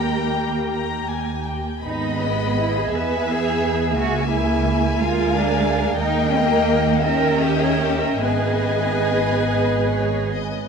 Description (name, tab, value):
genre	classical, slow romantic movement for string orchestra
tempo	46-60 BPM (dotted quarters)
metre	6/8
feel	rubato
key	G# minor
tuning	A4 = 440 Hz
part	dark chamber violin section	melody	0.0-10.7 s	B4 to G#5	-30 LUFS	left 8 dB	none
part	warm chamber violin section	second line	0.0-10.5 s	D#5 to B5	-24 LUFS	left 4 dB	none
part	warm studio viola section	accompaniment	0.0-10.5 s	G#3 to B4	-23 LUFS	equal	none
part	warm chamber cello section	bass	0.0-10.3 s	A#3 to B4	-25 LUFS	right 7 dB	none
part	warm chamber double bass section	bass	0.0-10.5 s	G#1 to E2	-24 LUFS	right 4 dB	none
room	wet cathedral reverb, RT60 5.4 s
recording	in a vast, echoing space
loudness	-18 LUFS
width	side -6 dB against mid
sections	0.0-10.7 A section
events	none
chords	0.0 D#; 1.8 G#m; 2.9 E; 4.0 C#m; 5.0 A#7/D; 6.0 D#; 7.0 D#7b9; 8.2 G#m